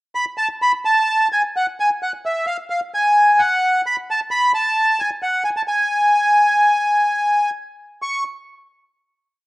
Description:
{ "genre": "tango", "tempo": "130 BPM", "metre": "4/4", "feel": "rubato", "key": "unclear", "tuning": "A4 = 440 Hz", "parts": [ { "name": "bandoneon", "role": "solo", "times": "0.1-8.2 s", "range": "E5 to C#6", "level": "-15 LUFS", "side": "equal", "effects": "cassette tape" } ], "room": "wet spring reverb, RT60 1.2 s, small room ambience", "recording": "home recording on cassette", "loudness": "-15 LUFS", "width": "side -20 dB against mid", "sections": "0.0-0.6 pickup bar; 0.6-8.0 A section; 8.0-9.5 final note", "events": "none", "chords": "none" }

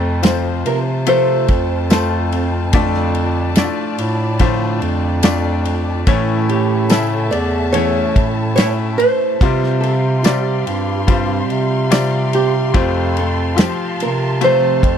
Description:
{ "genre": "pop ballad", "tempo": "72 BPM", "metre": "4/4", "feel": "straight", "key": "F major", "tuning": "A4 = 440 Hz", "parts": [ { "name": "nylon-string guitar", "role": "melody", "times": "0.0-15.0 s", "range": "G4 to D5", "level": "-19 LUFS", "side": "right 1 dB", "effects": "none" }, { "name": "bright grand piano", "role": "accompaniment", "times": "0.0-15.0 s", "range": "A2 to E5", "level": "-22 LUFS", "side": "left 8 dB", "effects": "none" }, { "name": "warm studio string section", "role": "sustained chords", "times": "0.0-15.0 s", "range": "F4 to C6", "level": "-28 LUFS", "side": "left 1 dB", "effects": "none" }, { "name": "fingerpicked steel-string acoustic guitar", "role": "arpeggios", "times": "0.0-15.0 s", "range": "F2 to A4", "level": "-25 LUFS", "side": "right 17 dB", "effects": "none" }, { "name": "warm bass clarinet", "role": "bass", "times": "0.0-15.0 s", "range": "E2 to C3", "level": "-19 LUFS", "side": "equal", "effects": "none" }, { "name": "natural country drum kit", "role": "drums", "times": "0.2-15.0 s", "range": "kick drum, ride cymbal, snare drum", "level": "-16 LUFS", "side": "equal", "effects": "none" }, { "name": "tambourine", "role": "percussion", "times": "0.2-13.8 s", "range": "none", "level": "-31 LUFS", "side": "right 25 dB", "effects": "none" } ], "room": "little or no reverb", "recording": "dry, close 1970s-style studio recording", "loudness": "-14 LUFS", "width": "side -8 dB against mid", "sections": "0.0-15.0 A section", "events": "none", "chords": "0.0 F; 2.7 Dm/F; 6.1 A; 9.4 Csus4; 12.7 F" }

